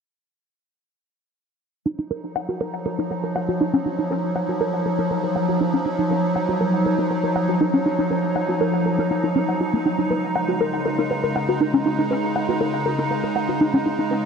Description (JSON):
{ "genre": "techno", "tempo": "120 BPM", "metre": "4/4", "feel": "straight", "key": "Eb minor", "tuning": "A4 = 440 Hz", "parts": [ { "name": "evolving wavetable pad", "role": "sustained chords", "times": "2.4-14.3 s", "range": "Db3 to Eb4", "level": "-22 LUFS", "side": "equal", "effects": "chorus, built-in reverb" }, { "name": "warbly dusty pluck", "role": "arpeggios", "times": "1.9-14.2 s", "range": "Bb3 to Gb5", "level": "-23 LUFS", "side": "equal", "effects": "chorus, dub echo" } ], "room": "wet spring reverb, RT60 2.6 s", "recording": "echo-heavy mix", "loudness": "-20 LUFS", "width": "side -6 dB against mid", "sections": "1.9-14.3 A section", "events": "none", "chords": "1.9 Ebmadd9; 9.9 Dbsus2" }